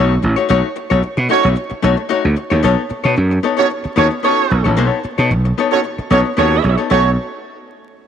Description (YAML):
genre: funk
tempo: 112 BPM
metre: 4/4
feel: straight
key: B mixolydian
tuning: A4 = 442 Hz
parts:
  - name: archtop guitar, miked and amplified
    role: accompaniment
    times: 0.0-7.1 s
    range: A3 to C#5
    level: -18 LUFS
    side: left 7 dB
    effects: none
  - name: gritty slap bass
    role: bass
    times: 0.0-7.2 s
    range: A1 to B2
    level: -14 LUFS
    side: right 1 dB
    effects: overdrive
  - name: mellow horn section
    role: second line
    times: 1.3-7.1 s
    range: A3 to C#5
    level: -18 LUFS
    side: right 10 dB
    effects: none
room: moderate plate reverb, RT60 2.9 s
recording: 1960s-style stereo with parts hard left and right, vinyl crackle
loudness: -13 LUFS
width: side -8 dB against mid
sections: 0.0-2.6 A section; 2.6-6.9 B section; 6.9-8.1 C section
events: band accent 0.5-2.6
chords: 0.0 B9